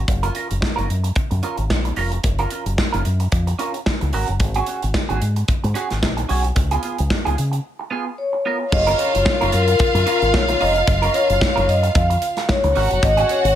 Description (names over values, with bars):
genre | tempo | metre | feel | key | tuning
disco | 111 BPM | 4/4 | swing 56% on 16ths | F# major | A4 = 440 Hz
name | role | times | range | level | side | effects
fingered electric bass with an envelope filter | bass | 0.0-13.5 s | E#1 to C#3 | -20 LUFS | equal | none
electric guitar at the edge of break-up | accompaniment | 0.1-13.5 s | B3 to A#4 | -25 LUFS | right 5 dB | wah
modern studio drum kit | drums | 0.1-13.6 s | crash cymbal, hi-hat, kick drum, snare drum | -22 LUFS | equal | gated reverb
vibraphone with soft mallets | melody | 8.2-13.6 s | A#4 to E#5 | -19 LUFS | left 2 dB | none
rich studio violin section | second line | 8.7-13.6 s | E#4 to F#5 | -22 LUFS | left 1 dB | none
room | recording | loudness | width
light reverb | none | -17 LUFS | side -11 dB against mid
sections
0.0-8.7 A section; 8.7-13.6 B section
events
break 7.6-8.7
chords
0.1 F#maj7; 4.1 G#7sus4; 6.6 C#7; 8.7 F#maj7; 12.8 G#7sus4